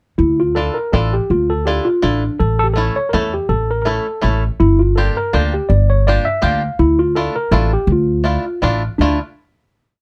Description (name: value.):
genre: musette waltz.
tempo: 164 BPM.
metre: 3/4.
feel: straight.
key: D harmonic minor.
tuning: A4 = 440 Hz.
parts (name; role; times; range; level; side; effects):
tine electric piano; melody; 0.2-9.2 s; D4 to F5; -20 LUFS; equal; overdrive.
upright bass; bass; 0.2-9.2 s; G1 to E2; -19 LUFS; equal; none.
bluegrass banjo; accompaniment; 0.6-9.2 s; A3 to A4; -22 LUFS; equal; none.
room: little or no reverb.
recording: close, detailed microphones.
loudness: -16 LUFS.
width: mono.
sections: 0.2-9.0 A section; 9.0-10.0 final chord.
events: none.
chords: 0.2 Dmadd9; 2.4 A; 4.6 Gm7; 6.8 Dmadd9.